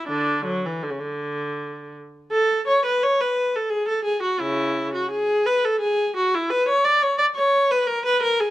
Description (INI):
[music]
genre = classical, baroque-style suite movement for unaccompanied viola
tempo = 86 BPM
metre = 3/4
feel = rubato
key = unclear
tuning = A4 = 440 Hz
[part]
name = warm viola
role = solo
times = 0.0-8.5 s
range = C#3 to D5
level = -19 LUFS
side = equal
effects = none
[sound]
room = light reverb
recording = close, detailed microphones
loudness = -19 LUFS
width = side -15 dB against mid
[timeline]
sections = 0.0-2.3 A section; 2.3-8.5 A section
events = none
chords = none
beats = | 0.08 0.84 1.58 | 2.32 3.02 3.71 | 4.40 5.10 5.81 | 6.50 7.19 7.88